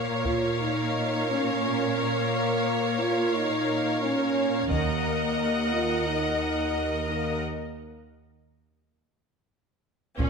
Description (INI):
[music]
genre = cinematic, epic orchestral film score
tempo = free time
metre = none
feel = none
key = Bb minor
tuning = A4 = 439 Hz
[part]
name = clear studio violin section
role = melody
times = 0.0-10.3 s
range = F5 to Gb5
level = -35 LUFS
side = left 2 dB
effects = none
[part]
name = clear symphonic violin section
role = second line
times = 0.0-10.3 s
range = Db5 to Eb5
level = -30 LUFS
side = left 2 dB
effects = none
[part]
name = rich symphonic viola section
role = accompaniment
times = 0.0-10.3 s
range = Db4 to Bb4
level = -33 LUFS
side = right 1 dB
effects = none
[part]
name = mellow French horn section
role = sustained chords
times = 0.0-10.3 s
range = Bb3 to F4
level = -28 LUFS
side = left 1 dB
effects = none
[part]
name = rich symphonic cello section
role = bass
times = 0.0-10.3 s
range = Eb2 to Bb2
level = -32 LUFS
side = right 5 dB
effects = none
[part]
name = taiko ensemble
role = drums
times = 0.2-0.6, 4.7-6.0, 10.2-10.3 s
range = none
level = -32 LUFS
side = left 1 dB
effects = none
[part]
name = clear symphonic double bass section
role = bass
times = 4.7-5.4, 10.2-10.3 s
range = Bb1 to Eb2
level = -33 LUFS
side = right 6 dB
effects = none
[sound]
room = wet scoring stage reverb, RT60 1.6 s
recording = none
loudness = -24 LUFS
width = side -5 dB against mid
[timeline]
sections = 0.0-10.2 A section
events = break 7.5-10.2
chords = 0.0 Bbm; 4.7 Ebm; 7.5 N.C.